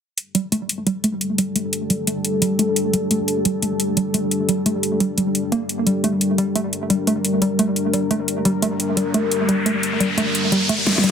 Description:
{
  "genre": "dark technical drum and bass",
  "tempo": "174 BPM",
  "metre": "4/4",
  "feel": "straight",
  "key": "G minor",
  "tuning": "A4 = 436 Hz",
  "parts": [
    { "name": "deep dark ambient pad", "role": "sustained chords", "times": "0.7-11.1 s", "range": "G3 to Bb4", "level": "-22 LUFS", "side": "left 2 dB", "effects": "chorus, built-in reverb" },
    { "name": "dubstep drum kit", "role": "drums", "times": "0.2-11.1 s", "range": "hi-hat, snare drum", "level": "-22 LUFS", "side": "equal", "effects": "none" },
    { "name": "warbly dusty pluck", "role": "arpeggios", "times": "0.3-11.1 s", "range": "G3 to Bb3", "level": "-22 LUFS", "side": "right 1 dB", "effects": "chorus, digital delay" },
    { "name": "riser", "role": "sound effects", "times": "8.9-11.1 s", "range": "none", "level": "-23 LUFS", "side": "left 1 dB", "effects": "none" }
  ],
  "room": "moderate plate reverb, RT60 1.3 s",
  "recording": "dense, heavily limited modern master",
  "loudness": "-18 LUFS",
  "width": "side -7 dB against mid",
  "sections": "0.2-11.1 A section",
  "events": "filter sweep on synth arpeggio sound 0.2-11.1; riser 8.9-11.1; drum fill 10.9",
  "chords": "0.2 Gm",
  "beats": "| 0.18 0.52 0.87 1.21 | 1.56 1.90 2.25 2.59 | 2.94 3.28 3.62 3.97 | 4.31 4.66 5.00 5.35 | 5.69 6.04 6.38 6.73 | 7.07 7.42 7.76 8.11 | 8.45 8.80 9.14 9.49 | 9.83 10.18 10.52 10.87"
}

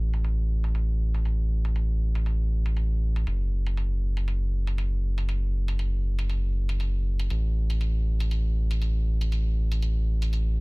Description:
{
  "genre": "deep house",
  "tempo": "119 BPM",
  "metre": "4/4",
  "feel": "swing 57% on 16ths",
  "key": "unclear",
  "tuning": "A4 = 439 Hz",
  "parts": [
    { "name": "round analog bass", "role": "bass", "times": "0.0-10.6 s", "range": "F#1 to A1", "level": "-24 LUFS", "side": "equal", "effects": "none" },
    { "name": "electronic hi-hat", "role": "drums", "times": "0.1-10.4 s", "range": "none", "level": "-42 LUFS", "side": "equal", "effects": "low-pass filter on hats, low-pass filter on room" }
  ],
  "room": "little or no reverb",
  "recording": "dense, heavily limited modern master",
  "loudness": "-24 LUFS",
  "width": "side -32 dB against mid",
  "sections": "0.0-10.6 A section",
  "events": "filter sweep on drum 0.0-10.6",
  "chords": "none",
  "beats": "0.24 0.75 | 1.25 1.76 2.26 2.77 | 3.27 3.77 4.28 4.78 | 5.29 5.79 6.30 6.80 | 7.30 7.81 8.31 8.82 | 9.32 9.82 10.33"
}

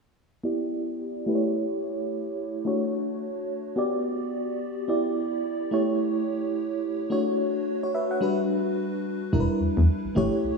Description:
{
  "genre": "R&B",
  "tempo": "108 BPM",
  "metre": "4/4",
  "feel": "swing 60% on 16ths",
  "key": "E dorian",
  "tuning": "A4 = 440 Hz",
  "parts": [
    { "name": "FM electric piano with soft pad layer", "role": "accompaniment", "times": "0.4-10.6 s", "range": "G3 to F#5", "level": "-25 LUFS", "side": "equal", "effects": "chorus, tremolo, low-pass filter, slapback echo" },
    { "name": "solid FM bass", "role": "bass", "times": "9.3-10.5 s", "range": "E1 to E2", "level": "-22 LUFS", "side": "equal", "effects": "none" }
  ],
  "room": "wet lush hall reverb, RT60 2.3 s",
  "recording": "big arena sound, small room ambience",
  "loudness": "-24 LUFS",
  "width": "side -4 dB against mid",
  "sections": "0.4-9.3 A section; 9.3-10.6 B section",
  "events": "filter sweep on FM electric piano 0.4-9.3",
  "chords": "0.4 Em7; 1.3 A7; 2.7 Dmaj7; 3.8 Gmaj7; 4.9 Em7; 5.7 A7; 7.1 Dmaj7; 8.2 Gmaj7; 9.3 Em7",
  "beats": "| 0.44 0.99 1.55 2.10 | 2.66 3.22 3.77 4.33 | 4.88 5.44 5.99 6.55 | 7.11 7.66 8.22 8.77 | 9.33 9.88 10.44"
}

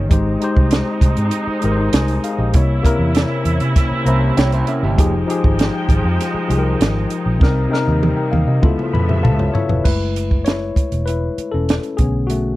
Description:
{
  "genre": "lush 1970s-style soul",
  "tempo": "99 BPM",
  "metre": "4/4",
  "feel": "straight",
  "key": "F minor",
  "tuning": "A4 = 440 Hz",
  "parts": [
    { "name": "tine electric piano", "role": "accompaniment", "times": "0.0-12.6 s", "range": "C3 to Cb6", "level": "-20 LUFS", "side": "left 3 dB", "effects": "none" },
    { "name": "muted studio string section", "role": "sustained chords", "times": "0.0-9.8 s", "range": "C3 to G5", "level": "-25 LUFS", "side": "right 2 dB", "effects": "none" },
    { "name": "vintage muted fingered electric bass", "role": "bass", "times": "0.0-12.6 s", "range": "E1 to C3", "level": "-19 LUFS", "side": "equal", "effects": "none" },
    { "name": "compact cocktail drum kit", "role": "drums", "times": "0.1-12.4 s", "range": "crash cymbal, hi-hat, kick drum, snare drum, toms", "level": "-17 LUFS", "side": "right 1 dB", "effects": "none" },
    { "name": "electric guitar through a small old amp", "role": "riff", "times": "4.1-5.1 s", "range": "Bb3 to Db5", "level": "-23 LUFS", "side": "right 5 dB", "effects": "none" }
  ],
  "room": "little or no reverb",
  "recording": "dry, close 1970s-style studio recording",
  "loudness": "-14 LUFS",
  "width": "side -17 dB against mid",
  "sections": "0.0-9.9 A section; 9.9-12.6 B section",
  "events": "tine electric piano fill 3.8-5.0, 8.6-9.9; drum fill 7.4-9.9; tine electric piano solo 9.9-12.6",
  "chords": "0.1 Abmaj7; 2.5 C7b9; 5.0 Fm9; 7.4 Cm7; 8.6 Db7alt; 9.9 F#m9; 12.0 Bm9",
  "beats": "| 0.11 0.72 1.33 1.94 | 2.55 3.16 3.77 4.38 | 4.99 5.59 6.20 6.81 | 7.42 8.03 8.64 9.24 | 9.85 10.46 11.07 11.68 | 12.29"
}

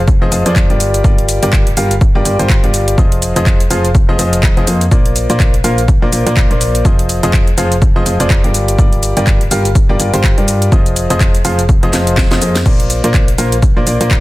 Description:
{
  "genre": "piano house",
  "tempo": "124 BPM",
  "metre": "4/4",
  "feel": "swing 58% on 16ths",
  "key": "F dorian",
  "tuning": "A4 = 444 Hz",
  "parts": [
    { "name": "solid FM bass", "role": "bass", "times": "0.0-14.2 s", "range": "F1 to G2", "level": "-16 LUFS", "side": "equal", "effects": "sidechain pumping" },
    { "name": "electronic kick drum", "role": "drums", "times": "0.1-14.2 s", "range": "none", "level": "-11 LUFS", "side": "equal", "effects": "none" },
    { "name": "house drum kit", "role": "drums", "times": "0.1-14.2 s", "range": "crash cymbal, handclaps, hi-hat, shaker, snare drum", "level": "-19 LUFS", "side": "equal", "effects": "none" },
    { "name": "bright baby grand piano", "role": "riff", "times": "0.2-14.2 s", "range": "F3 to F5", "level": "-16 LUFS", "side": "left 1 dB", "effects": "sidechain pumping, tape echo" }
  ],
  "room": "little or no reverb",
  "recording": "dense, heavily limited modern master",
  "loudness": "-10 LUFS",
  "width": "side -18 dB against mid",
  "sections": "0.0-14.2 A section",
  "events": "drum fill 11.9-12.7",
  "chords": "0.0 Fm7; 0.8 Gm7; 3.0 Fm7; 4.9 Bbadd9; 6.9 Fm7; 8.5 Gm7; 10.7 Fm7; 12.7 Bbadd9",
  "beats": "0.08 0.56 | 1.04 1.53 2.01 2.50 | 2.98 3.46 3.95 4.43 | 4.92 5.40 5.88 6.37 | 6.85 7.33 7.82 8.30 | 8.79 9.27 9.75 10.24 | 10.72 11.21 11.69 12.17 | 12.66 13.14 13.62 14.11"
}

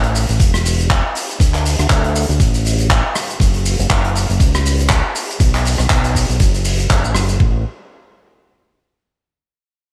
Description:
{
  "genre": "nu-disco, nu disco",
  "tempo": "120 BPM",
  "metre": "4/4",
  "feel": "swing 56% on 16ths",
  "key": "unclear",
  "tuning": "A4 = 440 Hz",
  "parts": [
    { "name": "fingered electric bass with an envelope filter", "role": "bass", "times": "0.0-7.6 s", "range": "E1 to D2", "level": "-19 LUFS", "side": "equal", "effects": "none" },
    { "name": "raw garage drum kit", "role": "drums", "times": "0.0-7.4 s", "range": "handclaps, hi-hat, rim click, shaker", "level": "-21 LUFS", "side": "equal", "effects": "none" },
    { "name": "electronic kick drum", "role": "drums", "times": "0.4-7.5 s", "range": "none", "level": "-17 LUFS", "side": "equal", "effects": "none" }
  ],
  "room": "little or no reverb",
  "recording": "none",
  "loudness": "-16 LUFS",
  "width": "mono",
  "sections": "0.0-7.4 A section; 7.4-9.4 B section",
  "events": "drop 0.0-7.4",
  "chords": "none",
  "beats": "0.40 0.90 | 1.40 1.90 2.40 2.90 | 3.40 3.90 4.40 4.90 | 5.40 5.90 6.40 6.90 | 7.40"
}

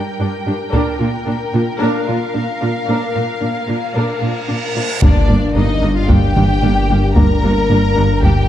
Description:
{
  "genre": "cinematic, hybrid orchestral and electronic film score",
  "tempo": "112 BPM",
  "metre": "4/4",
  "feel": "straight",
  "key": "G minor",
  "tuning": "A4 = 440 Hz",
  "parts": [
    { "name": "rich symphonic violin section", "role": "second line", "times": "0.0-8.5 s", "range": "D4 to G5", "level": "-22 LUFS", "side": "left 3 dB", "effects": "none" },
    { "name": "warm symphonic viola section", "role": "accompaniment", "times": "0.2-8.3 s", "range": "Bb3 to Bb4", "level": "-22 LUFS", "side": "equal", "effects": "none" },
    { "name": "rich symphonic cello section", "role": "bass", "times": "0.2-8.3 s", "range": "G2 to Bb2", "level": "-20 LUFS", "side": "right 2 dB", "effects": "none" },
    { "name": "solo taiko drums", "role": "drums", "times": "0.7-1.8, 5.0-8.5 s", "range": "none", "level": "-15 LUFS", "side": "equal", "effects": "none" },
    { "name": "reverse cymbal and impact", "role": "sound effects", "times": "3.8-7.2 s", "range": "none", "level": "-25 LUFS", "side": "equal", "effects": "none" },
    { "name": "clear symphonic violin section", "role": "melody", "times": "5.0-8.5 s", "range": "D5 to Bb5", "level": "-23 LUFS", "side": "left 3 dB", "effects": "none" },
    { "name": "dark French horn section", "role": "sustained chords", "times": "5.0-8.5 s", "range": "Bb3 to D4", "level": "-22 LUFS", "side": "left 3 dB", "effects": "none" },
    { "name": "detuned saw bass", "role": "bass", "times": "5.0-8.5 s", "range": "G1", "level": "-18 LUFS", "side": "equal", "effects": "none" },
    { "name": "warm symphonic double bass section", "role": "bass", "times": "5.0-8.3 s", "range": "G1", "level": "-19 LUFS", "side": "right 2 dB", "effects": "none" }
  ],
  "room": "moderate scoring stage reverb, RT60 1.8 s",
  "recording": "dark, warm production",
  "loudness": "-13 LUFS",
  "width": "side -12 dB against mid",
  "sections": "0.0-5.0 A section; 5.0-8.5 B section",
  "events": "reverse cymbal 3.8-5.0; impact 5.0-7.2",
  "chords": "0.0 Gm; 0.7 Bb; 5.0 Gm",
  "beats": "0.20 | 0.73 1.27 1.80 2.34 | 2.88 3.41 3.95 4.48 | 5.02 5.55 6.09 6.63 | 7.16 7.70 8.23"
}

